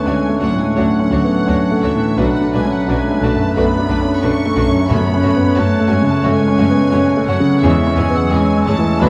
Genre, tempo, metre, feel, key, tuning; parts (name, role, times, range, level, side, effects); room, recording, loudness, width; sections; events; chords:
classical, romantic movement for piano and orchestra; 88 BPM; 4/4; rubato; F# minor; A4 = 441 Hz
clear concert grand piano; melody; 0.0-9.1 s; B1 to D4; -18 LUFS; equal
rich studio violin section; melody; 0.0-9.1 s; E5 to C#6; -30 LUFS; equal
clear oboe; second line; 0.0-9.1 s; B4 to C#5; -29 LUFS; equal
mellow large flute ensemble; second line; 0.0-9.1 s; E6 to F#6; -33 LUFS; equal
warm clarinet; second line; 0.0-9.1 s; C#4 to D4; -28 LUFS; equal
mellow bassoon; accompaniment; 0.0-9.1 s; G#3 to A3; -29 LUFS; equal
warm studio cello section; bass; 0.0-9.1 s; E3 to C#4; -24 LUFS; equal
rich studio violin section; second line; 0.1-9.1 s; F#4 to C#5; -30 LUFS; equal
bright studio viola section; accompaniment; 0.1-9.1 s; E3 to D4; -29 LUFS; equal
rich studio double bass section; bass; 0.1-9.1 s; B1 to F#2; -25 LUFS; equal
warm French horn section; sustained chords; 0.8-9.1 s; F#3 to D4; -27 LUFS; equal
timpani; percussion; 4.9-5.9 s; F#2; -25 LUFS; equal
wet recital hall reverb, RT60 1.6 s; dark, warm production, vinyl crackle; -15 LUFS; mono
0.0-9.1 A section
0.0 Dmaj7; 2.2 Bm7; 4.9 F#m; 7.6 C#m/E